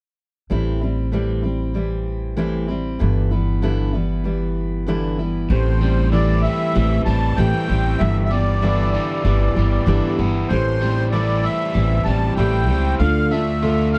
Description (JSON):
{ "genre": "rock", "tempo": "96 BPM", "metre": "4/4", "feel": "straight", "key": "A minor", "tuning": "A4 = 442 Hz", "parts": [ { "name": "picked steel-string acoustic guitar", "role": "accompaniment", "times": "0.5-14.0 s", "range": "G2 to G4", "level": "-25 LUFS", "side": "equal", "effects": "none" }, { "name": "upright bass", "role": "bass", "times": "0.5-13.9 s", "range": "G1 to D2", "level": "-22 LUFS", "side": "equal", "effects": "none" }, { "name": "accordion", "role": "melody", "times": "5.5-14.0 s", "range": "C5 to A5", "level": "-27 LUFS", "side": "equal", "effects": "light tremolo tuning, plate reverb" }, { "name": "crunchy overdriven guitar", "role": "riff", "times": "5.5-14.0 s", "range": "G2 to F4", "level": "-28 LUFS", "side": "equal", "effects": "none" } ], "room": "light reverb", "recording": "dark, warm production", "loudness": "-20 LUFS", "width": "mono", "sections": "0.5-5.5 A section; 5.5-14.0 B section", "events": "none", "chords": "0.5 Am7; 3.0 G6; 5.5 Am7; 8.0 G6; 10.5 Am7; 13.0 Dm" }